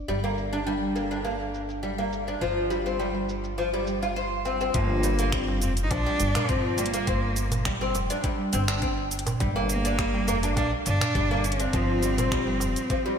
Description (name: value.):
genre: organic downtempo.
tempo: 103 BPM.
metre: 4/4.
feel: straight.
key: G minor.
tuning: A4 = 440 Hz.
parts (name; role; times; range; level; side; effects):
upright bass; bass; 0.0-12.7 s; F1 to Bb1; -30 LUFS; equal; sidechain pumping.
bronze singing bowl; texture; 0.0-4.8 s; D4 to D5; -48 LUFS; left 2 dB; none.
oud; arpeggios; 0.1-13.2 s; F3 to C5; -27 LUFS; equal; ping-pong delay, shimmer reverb.
organic electronic drum kit; drums; 0.1-13.0 s; cabasa, finger snaps, hi-hat; -33 LUFS; right 1 dB; overdrive, low-pass filter on perc, small room ambience, low-pass filter on hats, low-pass filter on snare.
clear cello; melody; 4.7-13.2 s; Bb3 to Eb4; -30 LUFS; equal; ping-pong delay, shimmer reverb, slapback echo.
electronic kick drum; drums; 4.7-13.0 s; none; -30 LUFS; equal; overdrive, small room ambience.
darbuka; percussion; 4.7-12.7 s; none; -34 LUFS; right 2 dB; none.
room: moderate lush hall reverb, RT60 1.9 s, studio ambience.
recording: big arena sound.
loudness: -24 LUFS.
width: side -7 dB against mid.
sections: 0.0-4.7 A section; 4.7-13.2 B section.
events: none.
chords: 0.1 Gm; 2.4 Fsus2/G; 4.7 Gm7; 7.1 C5; 9.4 Bb6; 11.7 Fsus2.